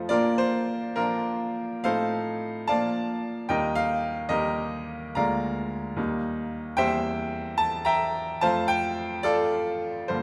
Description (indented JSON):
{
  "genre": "classical, romantic character piece for solo piano",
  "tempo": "66-76 BPM (dotted quarters)",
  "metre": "6/8",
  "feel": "rubato",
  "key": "Bb major",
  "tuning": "A4 = 440 Hz",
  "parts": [
    { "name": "bright grand piano", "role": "solo", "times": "0.0-10.2 s", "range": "D2 to C6", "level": "-27 LUFS", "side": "equal", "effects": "none" }
  ],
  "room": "wet scoring stage reverb, RT60 1.6 s",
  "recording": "none",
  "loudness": "-27 LUFS",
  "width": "mono",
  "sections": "0.1-10.2 A section",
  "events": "none",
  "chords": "0.1 Bb; 1.9 F7/A; 2.7 Bb; 3.5 Eb; 5.2 Bb7/D; 6.0 Eb; 6.8 C7/E; 8.4 F"
}